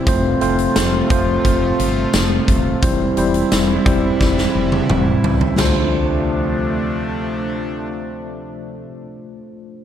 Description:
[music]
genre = 1980s-style pop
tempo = 87 BPM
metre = 4/4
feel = straight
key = D minor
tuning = A4 = 442 Hz
[part]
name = tine electric piano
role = accompaniment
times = 0.0-9.8 s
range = G3 to C5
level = -19 LUFS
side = equal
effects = medium stereo tremolo
[part]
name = sweeping resonant pad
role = sustained chords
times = 0.0-8.8 s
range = C3 to F4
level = -24 LUFS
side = equal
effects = chorus
[part]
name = woody fretless electric bass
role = bass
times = 0.1-8.8 s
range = Eb1 to D2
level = -23 LUFS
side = equal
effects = wide subtle chorus
[part]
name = huge arena drum kit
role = drums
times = 0.1-5.7 s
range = crash cymbal, hi-hat, kick drum, snare drum, tambourine, toms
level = -19 LUFS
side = equal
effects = none
[sound]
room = light reverb, studio ambience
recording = dark, warm production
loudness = -15 LUFS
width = side -10 dB against mid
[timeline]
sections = 0.0-5.6 A section; 5.6-8.3 B section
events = drum fill 4.2-5.6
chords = 0.1 F; 2.8 C/E; 5.6 Dm7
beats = | 0.07 0.76 1.45 2.14 | 2.83 3.52 4.21 4.90 | 5.58 6.28 6.96 7.65

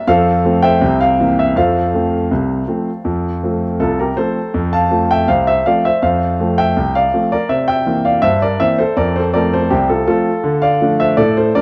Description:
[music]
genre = ragtime piano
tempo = 81 BPM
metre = 2/4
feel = straight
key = F major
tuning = A4 = 440 Hz
[part]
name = warm concert grand piano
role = solo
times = 0.0-11.6 s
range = C2 to A5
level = -15 LUFS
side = equal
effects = none
[sound]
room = wet spring reverb, RT60 2.1 s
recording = none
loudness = -15 LUFS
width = mono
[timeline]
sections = 0.0-4.5 A section; 4.5-11.6 B section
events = none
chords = 0.1 F; 0.8 C7; 1.6 F; 7.5 C7; 9.0 F; 10.5 Dm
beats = | 0.07 0.81 | 1.55 2.30 | 3.05 3.79 | 4.53 5.28 | 6.02 6.76 | 7.50 8.24 | 8.98 9.72 | 10.46 11.19

